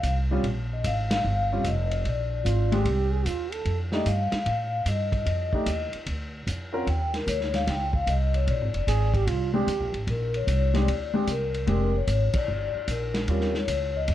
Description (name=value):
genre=jazz, small-group swing and bop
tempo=150 BPM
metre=4/4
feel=swing 66% on 8ths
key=Bb mixolydian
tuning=A4 = 442 Hz
part: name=upright bass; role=bass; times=0.0-14.1 s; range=F1 to A2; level=-26 LUFS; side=equal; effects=none
part: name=vintage drum kit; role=drums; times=0.0-14.1 s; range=hi-hat, kick drum, ride cymbal, snare drum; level=-32 LUFS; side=equal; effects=none
part: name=warm grand piano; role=accompaniment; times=0.3-6.9, 9.5-13.5 s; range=G3 to Bb4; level=-28 LUFS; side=left 1 dB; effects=none
part: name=vibraphone with soft mallets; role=melody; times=0.7-14.1 s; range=Bb4 to G5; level=-29 LUFS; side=left 4 dB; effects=none
part: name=mellow trombone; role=second line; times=2.4-3.8, 8.9-10.0 s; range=F4 to A4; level=-30 LUFS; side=right 7 dB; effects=none
room=light reverb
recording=dark, warm production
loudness=-24 LUFS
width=side -12 dB against mid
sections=0.0-10.1 A section; 10.1-14.1 A section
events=band accent 1.0, 12.3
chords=0.0 Eb13; 2.0 Bb9; 3.7 F13; 6.9 Cmadd9; 8.5 Bb13; 13.3 Eb13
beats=0.04 | 0.44 0.84 1.25 1.65 | 2.05 2.45 2.85 3.25 | 3.65 4.06 4.46 4.86 | 5.26 5.66 6.06 6.46 | 6.87 7.27 7.67 8.07 | 8.47 8.87 9.27 9.67 | 10.07 10.47 10.88 11.28 | 11.68 12.08 12.48 12.88 | 13.28 13.68 14.08